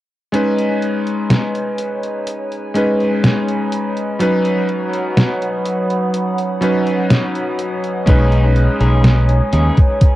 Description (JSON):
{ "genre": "vaporwave", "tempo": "62 BPM", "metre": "4/4", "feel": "straight", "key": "B major", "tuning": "A4 = 439 Hz", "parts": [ { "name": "bright electric grand piano", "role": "accompaniment", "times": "0.3-10.2 s", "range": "F#3 to B4", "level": "-18 LUFS", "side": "equal", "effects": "lush chorus, vintage 12-bit sampler grit, analog delay" }, { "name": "warbly tape-like pad", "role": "sustained chords", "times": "1.4-10.2 s", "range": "C#5 to D#6", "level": "-25 LUFS", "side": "right 2 dB", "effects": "chorus, built-in reverb, phaser" }, { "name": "detuned 8-bit digital drum machine", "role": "drums", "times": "0.3-10.2 s", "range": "hi-hat, snare drum", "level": "-16 LUFS", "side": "equal", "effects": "overdrive" }, { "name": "electric guitar at the edge of break-up", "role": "riff", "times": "8.1-10.0 s", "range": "C#4 to G#4", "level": "-23 LUFS", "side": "left 2 dB", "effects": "lush chorus, analog delay" }, { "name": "modern bright fingered electric bass", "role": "bass", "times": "8.1-9.7 s", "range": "B1 to D#2", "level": "-13 LUFS", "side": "equal", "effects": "none" }, { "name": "electronic kick drum", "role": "drums", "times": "8.1-10.2 s", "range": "none", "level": "-11 LUFS", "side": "equal", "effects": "overdrive" } ], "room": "light reverb", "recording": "echo-heavy mix, cassette tape", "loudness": "-14 LUFS", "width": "side -15 dB against mid", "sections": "0.3-10.2 A section", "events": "none", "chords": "0.3 B69; 4.2 C#9sus4; 8.1 B69", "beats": "| 0.34 1.30 2.27 3.24 | 4.21 5.17 6.14 7.11 | 8.08 9.04 10.01" }